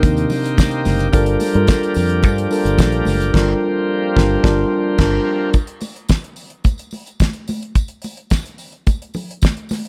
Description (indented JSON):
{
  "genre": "disco",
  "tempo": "109 BPM",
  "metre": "4/4",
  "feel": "straight",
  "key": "unclear",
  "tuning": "A4 = 440 Hz",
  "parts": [
    { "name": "mellow tine electric piano", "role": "accompaniment", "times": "0.0-5.6 s", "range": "C3 to Bb4", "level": "-20 LUFS", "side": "equal", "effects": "none" },
    { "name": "bright tonewheel organ", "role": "sustained chords", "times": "0.0-5.5 s", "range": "Eb3 to G4", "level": "-26 LUFS", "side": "equal", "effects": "overdrive, slow rotary speaker" },
    { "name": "fingered electric bass", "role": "bass", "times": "0.0-5.2 s", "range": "F#1 to G2", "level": "-21 LUFS", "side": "equal", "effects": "none" },
    { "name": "damped 70s drum kit", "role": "drums", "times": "0.0-9.9 s", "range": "crash cymbal, hi-hat, kick drum, snare drum", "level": "-19 LUFS", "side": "equal", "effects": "none" },
    { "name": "congas", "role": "percussion", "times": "0.0-9.8 s", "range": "none", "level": "-29 LUFS", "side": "equal", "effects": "none" },
    { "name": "tambourine", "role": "percussion", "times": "0.0-9.8 s", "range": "none", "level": "-40 LUFS", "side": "equal", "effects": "none" }
  ],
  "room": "small room reverb",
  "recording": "none",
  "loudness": "-17 LUFS",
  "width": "mono",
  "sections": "0.0-5.5 A section; 5.5-9.9 B section",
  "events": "band accent 3.3-5.5",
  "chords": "0.0 Cm9; 1.1 Gm7; 5.5 N.C.",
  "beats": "0.03 0.58 | 1.13 1.68 2.23 2.78 | 3.33 3.88 4.44 4.99 | 5.54 6.10 6.65 7.20 | 7.76 8.31 8.87 9.42"
}